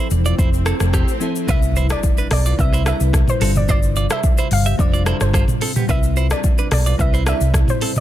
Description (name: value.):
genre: afrobeats.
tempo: 109 BPM.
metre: 4/4.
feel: straight.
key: C major.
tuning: A4 = 440 Hz.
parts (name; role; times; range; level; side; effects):
bell-like FM electric piano; accompaniment; 0.0-8.0 s; F3 to D5; -28 LUFS; left 3 dB; chorus.
ethereal airy pad; sustained chords; 0.0-8.0 s; C3 to B4; -29 LUFS; right 1 dB; ensemble chorus, built-in reverb, tremolo.
direct-recorded clean electric guitar; riff; 0.0-7.9 s; B3 to E5; -27 LUFS; right 7 dB; ping-pong delay.
swell and impact; sound effects; 0.0-3.7 s; none; -30 LUFS; equal; none.
hollow-body short-scale fingered electric bass; bass; 0.1-7.6 s; E1 to C2; -18 LUFS; equal; none.
afro-pop drum kit; drums; 0.1-8.0 s; hi-hat, kick drum, rim click, shaker, toms; -18 LUFS; equal; soft clipping on snare.
soft round pluck; melody; 1.5-8.0 s; C5 to F5; -25 LUFS; left 1 dB; chorus, ping-pong delay.
room: little or no reverb.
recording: dense, heavily limited modern master.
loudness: -15 LUFS.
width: side -13 dB against mid.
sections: 0.0-1.5 A section; 1.5-8.0 B section.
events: swell 0.0-1.5; impact 1.5-3.7.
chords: 0.0 Fmaj7; 1.5 Cmaj7; 3.4 G7sus4; 5.9 Cmaj7.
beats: 0.39 0.94 | 1.49 2.04 2.59 3.14 | 3.69 4.24 4.79 5.34 | 5.89 6.44 6.99 7.54.